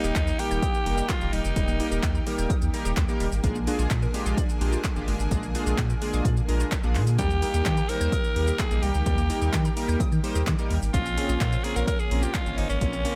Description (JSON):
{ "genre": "dance-pop", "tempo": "128 BPM", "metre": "4/4", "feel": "straight", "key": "unclear", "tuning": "A4 = 445 Hz", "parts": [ { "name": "raspy alto saxophone", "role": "melody", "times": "0.0-2.3, 7.2-13.2 s", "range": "Db4 to Bb4", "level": "-32 LUFS", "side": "equal", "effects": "digital delay" }, { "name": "chorused polysynth", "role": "accompaniment", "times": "0.0-13.2 s", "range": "G3 to C5", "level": "-34 LUFS", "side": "equal", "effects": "sidechain pumping" }, { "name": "lush unison pad", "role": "sustained chords", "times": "0.0-13.2 s", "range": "Db3 to Ab4", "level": "-38 LUFS", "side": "equal", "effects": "chorus, sidechain pumping" }, { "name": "hollow square pluck", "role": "arpeggios", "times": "0.0-13.1 s", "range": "G3 to G6", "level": "-40 LUFS", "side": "equal", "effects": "chorus, sidechain pumping, digital delay" }, { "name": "warm sub bass", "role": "bass", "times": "0.0-13.1 s", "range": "Eb1 to Eb3", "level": "-28 LUFS", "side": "equal", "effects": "sidechain pumping" }, { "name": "punchy analog drum machine", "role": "drums", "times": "0.0-13.2 s", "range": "handclaps, hi-hat, kick drum, shaker", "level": "-30 LUFS", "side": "equal", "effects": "none" }, { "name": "group handclap", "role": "percussion", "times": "0.2-12.5 s", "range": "none", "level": "-46 LUFS", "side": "equal", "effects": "none" } ], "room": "little or no reverb", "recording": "none", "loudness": "-25 LUFS", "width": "mono", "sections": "0.0-13.2 A section", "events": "none", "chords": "0.0 Eb; 3.4 Bb7; 7.2 Eb; 10.9 Bbmadd9", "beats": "0.16 0.63 1.09 | 1.56 2.03 2.50 2.97 | 3.44 3.91 4.38 4.84 | 5.31 5.78 6.25 6.72 | 7.19 7.66 8.13 8.60 | 9.06 9.53 10.00 10.47 | 10.94 11.41 11.88 12.35 | 12.81" }